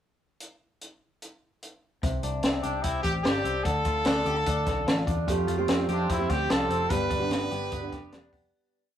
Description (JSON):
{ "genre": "jangly indie pop", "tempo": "148 BPM", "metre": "4/4", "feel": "straight", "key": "unclear", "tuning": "A4 = 440 Hz", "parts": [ { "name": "compact cocktail drum kit", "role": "drums", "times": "0.4-8.4 s", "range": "hi-hat, kick drum, snare drum", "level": "-29 LUFS", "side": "equal", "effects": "none" }, { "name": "direct-recorded clean electric guitar", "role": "arpeggios", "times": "2.0-9.0 s", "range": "G2 to A4", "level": "-33 LUFS", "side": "left 4 dB", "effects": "phaser" }, { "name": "vintage muted picked electric bass", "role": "bass", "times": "2.0-8.5 s", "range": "E1 to F2", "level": "-32 LUFS", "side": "equal", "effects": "none" }, { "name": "brilliant trumpet", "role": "melody", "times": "2.6-8.3 s", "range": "D4 to B4", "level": "-29 LUFS", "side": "equal", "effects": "none" }, { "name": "fingerpicked steel-string acoustic guitar", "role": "accompaniment", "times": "5.3-9.0 s", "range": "F3 to G4", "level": "-30 LUFS", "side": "right 4 dB", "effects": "none" } ], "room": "moderate studio reverb, RT60 0.6 s", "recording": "rough rehearsal-room recording, warm saturation", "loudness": "-24 LUFS", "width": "side -10 dB against mid", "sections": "0.4-2.0 pickup bar; 2.0-8.5 verse", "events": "fade-out 6.9-8.5", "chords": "0.4 N.C.; 2.0 Csus2; 3.7 Dm; 5.3 Fadd9; 6.9 G", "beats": "| 0.41 0.81 1.22 1.63 | 2.03 2.44 2.85 3.25 | 3.66 4.07 4.47 4.88 | 5.29 5.69 6.10 6.51 | 6.92 7.32 7.73 8.14" }